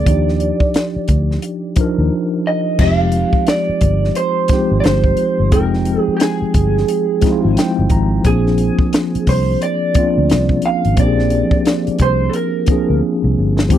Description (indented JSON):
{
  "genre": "R&B, neo-soul",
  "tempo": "88 BPM",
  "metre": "4/4",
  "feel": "swing 59% on 16ths",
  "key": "F dorian",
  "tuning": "A4 = 439 Hz",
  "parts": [
    { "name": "electric guitar through a small old amp", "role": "melody", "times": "0.0-13.0 s", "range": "G4 to F5", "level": "-19 LUFS", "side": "right 4 dB", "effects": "lush chorus" },
    { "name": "mellow tine electric piano", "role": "accompaniment", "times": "0.0-13.8 s", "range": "F3 to Bb5", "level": "-18 LUFS", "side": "left 1 dB", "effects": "medium stereo tremolo" },
    { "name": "vintage muted fingered electric bass", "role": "bass", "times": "0.0-13.8 s", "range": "F1 to F2", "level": "-16 LUFS", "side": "equal", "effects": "none" },
    { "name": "compact cocktail drum kit", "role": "drums", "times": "0.1-13.8 s", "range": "crash cymbal, hi-hat, kick drum, snare drum", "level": "-17 LUFS", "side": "left 1 dB", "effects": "none" }
  ],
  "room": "light reverb",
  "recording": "dry, close 1970s-style studio recording",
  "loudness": "-13 LUFS",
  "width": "side -11 dB against mid",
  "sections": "0.0-2.8 A section; 2.8-13.8 A section",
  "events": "silent gap 2.1-2.8; tine electric piano fill 7.2-8.2; drum fill 13.0-13.7",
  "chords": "0.1 Ebmaj9; 2.8 Fm9; 8.2 Bb9"
}